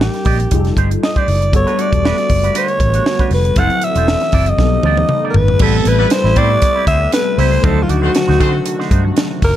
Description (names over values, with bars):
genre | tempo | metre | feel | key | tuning
polished 1980s jazz-funk pop | 118 BPM | 4/4 | swing 54% on 16ths | unclear | A4 = 436 Hz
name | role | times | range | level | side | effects
growling alto saxophone | melody | 0.0-9.6 s | F4 to F#5 | -17 LUFS | equal | none
tine electric piano | accompaniment | 0.0-9.6 s | F#3 to C5 | -22 LUFS | left 2 dB | ensemble chorus
vintage muted fingered electric bass | bass | 0.0-9.6 s | E1 to D3 | -15 LUFS | equal | none
tight funk drum kit | drums | 0.0-9.6 s | crash cymbal, hi-hat, kick drum, snare drum, toms | -17 LUFS | equal | none
electric guitar with an envelope filter | riff | 0.1-9.3 s | G3 to D5 | -24 LUFS | right 6 dB | wide subtle chorus
chorused pulse-width pad | sustained chords | 1.5-9.6 s | C3 to B4 | -24 LUFS | left 1 dB | none
warm horn section | second line | 6.0-8.6 s | G3 to C5 | -24 LUFS | left 4 dB | none
room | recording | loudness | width
studio reverb | dark, warm production | -11 LUFS | side -12 dB against mid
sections
0.0-5.6 A section; 5.6-9.6 B section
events
drum fill 4.6-5.6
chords
0.0 Cm7; 0.5 F9; 1.5 Gmaj9; 3.6 F#m7b5; 4.6 B7alt; 5.6 Am9; 7.6 D7b9